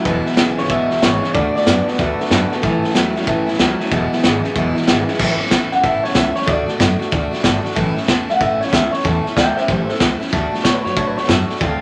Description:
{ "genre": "rockabilly", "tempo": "187 BPM", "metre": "4/4", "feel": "swing 64% on 8ths", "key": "A major", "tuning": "A4 = 440 Hz", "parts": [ { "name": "picked steel-string acoustic guitar", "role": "accompaniment", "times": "0.0-11.8 s", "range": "E2 to F#4", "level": "-25 LUFS", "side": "equal", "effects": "none" }, { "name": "electric guitar through a small old amp", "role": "riff", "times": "0.0-5.2 s", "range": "E2 to B3", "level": "-23 LUFS", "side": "equal", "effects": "none" }, { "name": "electric guitar through a small old amp", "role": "melody", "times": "0.1-2.9, 5.7-11.8 s", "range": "G4 to G5", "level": "-22 LUFS", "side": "equal", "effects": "spring reverb" }, { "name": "upright bass", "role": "bass", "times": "0.1-11.8 s", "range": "E1 to A2", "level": "-26 LUFS", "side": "equal", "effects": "none" }, { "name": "vintage drum kit", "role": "drums", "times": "0.1-11.7 s", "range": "crash cymbal, hi-hat, kick drum, snare drum", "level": "-20 LUFS", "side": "equal", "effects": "none" } ], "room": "moderate studio ambience, RT60 0.5 s", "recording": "none", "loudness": "-17 LUFS", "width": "mono", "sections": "0.0-5.2 A section; 5.2-11.8 B section", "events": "clean electric guitar solo 5.2-11.8", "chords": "0.1 E; 1.3 D; 2.6 A; 3.9 E; 5.2 A; 6.5 D; 7.8 A; 10.3 D", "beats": "| 0.05 0.37 0.70 1.02 | 1.34 1.66 1.99 2.31 | 2.63 2.95 3.27 3.59 | 3.92 4.24 4.56 4.88 | 5.20 5.52 5.84 6.16 | 6.48 6.80 7.12 7.44 | 7.76 8.09 8.40 8.72 | 9.05 9.37 9.69 10.01 | 10.33 10.65 10.97 11.29 | 11.61" }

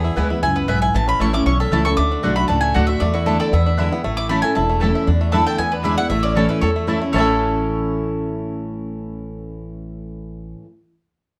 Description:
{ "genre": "bluegrass", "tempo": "232 BPM", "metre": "4/4", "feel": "straight", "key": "A major", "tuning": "A4 = 442 Hz", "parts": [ { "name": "picked steel-string acoustic guitar", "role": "accompaniment", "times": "0.0-10.7 s", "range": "E2 to F#4", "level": "-25 LUFS", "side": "equal", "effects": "none" }, { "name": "bluegrass banjo", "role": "arpeggios", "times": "0.0-10.6 s", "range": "E3 to A4", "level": "-27 LUFS", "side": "equal", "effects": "none" }, { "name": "upright bass", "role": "bass", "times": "0.0-10.5 s", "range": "E1 to E2", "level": "-24 LUFS", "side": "equal", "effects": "none" }, { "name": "mandolin", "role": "stabs", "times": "0.2-10.7 s", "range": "A3 to B5", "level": "-28 LUFS", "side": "equal", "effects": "none" }, { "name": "mandolin", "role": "melody", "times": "0.4-10.5 s", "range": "F#4 to D6", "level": "-25 LUFS", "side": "equal", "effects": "none" } ], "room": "moderate studio reverb, RT60 0.6 s", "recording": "dark, warm production", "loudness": "-19 LUFS", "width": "mono", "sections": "0.0-5.1 A section; 5.1-7.1 B section; 7.1-9.2 C section", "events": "none", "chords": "0.0 E; 0.9 A; 2.0 D; 3.0 E7sus4; 3.5 E7; 4.0 A; 5.1 E7sus4; 5.6 E7; 6.1 A", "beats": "0.17 0.43 0.69 | 0.94 1.20 1.46 1.72 | 1.98 2.23 2.49 2.75 | 3.01 3.27 3.53 3.79 | 4.04 4.30 4.56 4.82 | 5.08 5.33 5.59 5.85 | 6.11 6.37 6.63 6.89 | 7.14 7.40 7.66 7.92 | 8.18 8.44 8.70 8.96" }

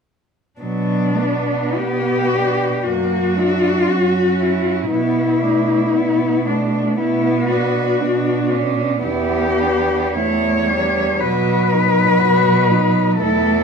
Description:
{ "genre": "classical, lyrical piece for cello ensemble", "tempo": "57 BPM", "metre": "4/4", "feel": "uneven beats, rubato", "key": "B minor", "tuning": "A4 = 438 Hz", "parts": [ { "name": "warm cello", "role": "melody", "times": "0.6-13.6 s", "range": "D4 to C#5", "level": "-18 LUFS", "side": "left 4 dB", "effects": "none" }, { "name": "dark cello", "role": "second line", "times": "0.6-13.6 s", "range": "B3 to F#4", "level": "-23 LUFS", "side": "right 9 dB", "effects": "none" }, { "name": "warm cello", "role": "accompaniment", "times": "0.6-13.6 s", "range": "F#3 to D4", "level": "-22 LUFS", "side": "right 1 dB", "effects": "none" }, { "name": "warm cello", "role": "bass", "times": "0.6-13.6 s", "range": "E2 to B2", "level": "-23 LUFS", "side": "right 2 dB", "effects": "none" } ], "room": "wet recital hall reverb, RT60 1.8 s", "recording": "minimal, uncompressed stereo recording", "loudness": "-15 LUFS", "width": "side -5 dB against mid", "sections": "0.6-13.6 A section", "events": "none", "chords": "0.6 Bm; 2.8 F#5; 4.9 Bm; 9.0 Em7; 11.2 B", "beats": "| 0.61 1.79 2.85 3.88 | 4.91 5.93 6.98 8.01 | 9.04 10.17 11.21 12.20 | 13.21" }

